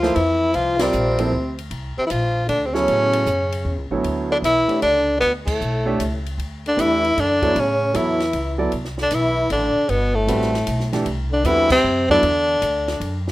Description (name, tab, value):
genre	modal jazz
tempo	154 BPM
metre	3/4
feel	swing 66% on 8ths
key	D major from 4.0 s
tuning	A4 = 437 Hz
part	clear tenor saxophone	melody	0.0-13.2 s	A3 to F4	-19 LUFS	equal	none
part	breathy trombone	second line	0.0-13.2 s	A2 to F3	-27 LUFS	left 2 dB	none
part	warm grand piano	accompaniment	0.0-12.2 s	D2 to E5	-23 LUFS	right 2 dB	none
part	upright bass	bass	0.0-13.3 s	G1 to A2	-25 LUFS	equal	none
part	compact cocktail drum kit	drums	0.0-13.3 s	crash cymbal, hi-hat, kick drum, ride cymbal, snare drum	-32 LUFS	equal	none
room	light reverb, small room ambience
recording	rough home demo mix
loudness	-17 LUFS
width	side -17 dB against mid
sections	0.0-4.0 A section; 4.0-13.3 B section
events	band accent 0.7, 5.4, 11.6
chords	0.0 C9sus4; 2.9 Aadd9; 4.0 Dmaj9; 8.7 Cmaj9